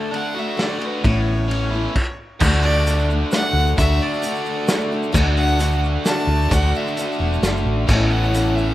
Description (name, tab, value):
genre	folk rock and heartland rock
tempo	132 BPM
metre	3/4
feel	straight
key	D major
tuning	A4 = 441 Hz
part	clear fiddle	melody	0.0-8.7 s	A4 to A5	-26 LUFS	equal	analog delay
part	picked steel-string acoustic guitar	accompaniment	0.0-8.7 s	A2 to F#4	-26 LUFS	left 3 dB	none
part	tonewheel organ	sustained chords	0.0-8.7 s	A3 to A4	-30 LUFS	equal	slow rotary speaker
part	biting overdriven guitar	riff	0.0-8.7 s	A2 to A4	-24 LUFS	equal	none
part	loose indie drum kit	drums	0.1-8.4 s	crash cymbal, hi-hat, kick drum, ride cymbal, snare drum	-22 LUFS	equal	none
part	hollow-body short-scale fingered electric bass	bass	1.0-8.7 s	E1 to D2	-19 LUFS	equal	none
part	egg shaker	percussion	2.4-8.6 s	none	-39 LUFS	right 2 dB	none
room	studio ambience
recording	rough home demo mix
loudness	-17 LUFS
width	side -14 dB against mid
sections	0.0-2.4 A section; 2.4-8.7 B section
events	none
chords	0.0 D; 1.0 Aadd9; 2.4 D; 7.9 Aadd9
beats	0.13 0.58 | 1.04 1.50 1.95 | 2.41 2.86 3.32 | 3.78 4.23 4.69 | 5.14 5.60 6.05 | 6.51 6.97 7.42 | 7.88 8.34